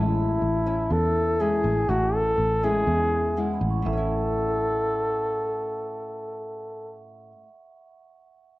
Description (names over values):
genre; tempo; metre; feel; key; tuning
bossa nova; 122 BPM; 4/4; straight; A major; A4 = 440 Hz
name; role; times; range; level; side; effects
mellow flugelhorn; melody; 0.0-7.0 s; E4 to A4; -25 LUFS; equal; cassette tape
nylon-string guitar; accompaniment; 0.0-7.5 s; A2 to E4; -30 LUFS; left 4 dB; none
vibraphone with medium hard mallets; accompaniment; 0.0-8.6 s; E5 to C#6; -37 LUFS; right 5 dB; none
fingered electric bass; bass; 0.0-7.0 s; A1 to E2; -27 LUFS; equal; none
room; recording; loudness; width
light reverb, studio ambience; home recording on cassette, lossy compression artefacts; -22 LUFS; side -18 dB against mid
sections
0.0-3.9 A section; 3.9-7.8 B section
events
none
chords
0.0 Amaj7; 3.9 A